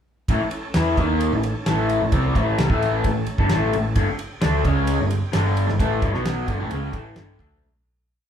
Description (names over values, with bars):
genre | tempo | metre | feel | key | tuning
classic rock | 131 BPM | 4/4 | straight | A mixolydian | A4 = 439 Hz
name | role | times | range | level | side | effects
tonewheel organ | sustained chords | 0.3-7.6 s | C#4 to A5 | -37 LUFS | right 2 dB | none
raw garage guitar | riff | 0.3-7.6 s | G2 to E4 | -24 LUFS | left 4 dB | overdrive, phaser
raw garage guitar | riff | 0.3-7.6 s | G2 to E4 | -28 LUFS | right 7 dB | overdrive, spring reverb
hollow-body short-scale picked electric bass | bass | 0.3-7.6 s | G1 to E2 | -24 LUFS | right 1 dB | none
damped 70s drum kit | drums | 0.3-7.5 s | kick drum, ride cymbal, snare drum | -25 LUFS | equal | none
room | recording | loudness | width
moderate large studio reverb, RT60 0.9 s | band playing live in one room, faint mains hum | -19 LUFS | side -8 dB against mid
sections
0.3-7.6 riff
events
fade-out 5.8-7.6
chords
0.3 A; 4.0 G5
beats
| 0.29 0.75 1.21 1.67 | 2.12 2.58 3.04 3.50 | 3.96 4.42 4.88 5.33 | 5.79 6.25 6.71 7.17